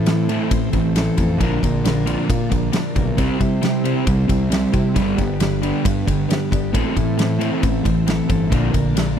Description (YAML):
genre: classic rock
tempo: 135 BPM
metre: 4/4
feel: straight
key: unclear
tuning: A4 = 440 Hz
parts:
  - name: picked plugged-in steel-string acoustic guitar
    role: accompaniment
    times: 0.0-9.2 s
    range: G2 to Bb4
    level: -28 LUFS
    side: left 1 dB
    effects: none
  - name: string machine, full ensemble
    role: sustained chords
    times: 0.0-9.2 s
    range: G3 to D5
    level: -30 LUFS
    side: equal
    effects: ensemble chorus
  - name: overdriven semi-hollow guitar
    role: riff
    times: 0.0-9.2 s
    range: G2 to C4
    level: -20 LUFS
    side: right 1 dB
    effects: none
  - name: fuzz fingered electric bass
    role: bass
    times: 0.0-9.2 s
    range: G1 to C3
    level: -23 LUFS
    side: equal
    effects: overdrive
  - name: big rock drum kit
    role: drums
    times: 0.1-9.1 s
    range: kick drum, ride cymbal, snare drum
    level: -22 LUFS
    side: equal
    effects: none
room: light reverb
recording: dry, close 1970s-style studio recording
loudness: -16 LUFS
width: side -8 dB against mid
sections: 0.0-9.2 A section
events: none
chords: 0.0 Am; 1.4 Bb; 3.2 C; 5.0 G; 6.7 Am; 8.5 Bb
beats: 0.07 0.52 0.96 | 1.41 1.85 2.30 2.74 | 3.19 3.63 4.08 4.52 | 4.96 5.41 5.85 6.30 | 6.74 7.19 7.63 8.07 | 8.52 8.96